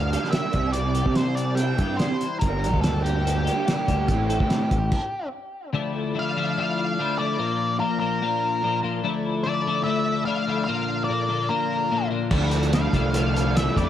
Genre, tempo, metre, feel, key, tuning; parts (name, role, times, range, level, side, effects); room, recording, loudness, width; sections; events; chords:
indie rock; 146 BPM; 4/4; straight; D minor; A4 = 436 Hz
octave-fuzz lead guitar; melody; 0.0-13.9 s; G4 to G5; -27 LUFS; left 1 dB; distortion, tape echo
raw garage guitar; riff; 0.0-4.7, 12.3-13.9 s; G2 to E4; -28 LUFS; right 8 dB; overdrive, ensemble chorus
twelve-string electric guitar; riff; 0.0-13.9 s; G2 to A4; -27 LUFS; left 5 dB; ensemble chorus
fuzz picked electric bass; bass; 0.0-4.9, 12.3-13.9 s; G1 to C3; -25 LUFS; equal; overdrive
cloth-damped thuddy drum kit; drums; 0.1-5.0, 12.3-13.9 s; crash cymbal, hi-hat, kick drum, snare drum; -26 LUFS; equal
overdriven combo organ; sustained chords; 5.7-13.9 s; F3 to F5; -33 LUFS; right 1 dB
light reverb; dark, warm production; -21 LUFS; side -11 dB against mid
0.0-5.7 A section; 5.7-13.9 B section
stop 4.9-5.7
0.0 Gm; 0.6 Cadd9; 2.4 Gm; 4.1 Am; 4.7 Gsus2/A; 5.3 N.C.; 5.7 Dmadd9; 7.4 Bb; 9.0 Dmadd9; 10.7 Bb; 12.3 Dmadd9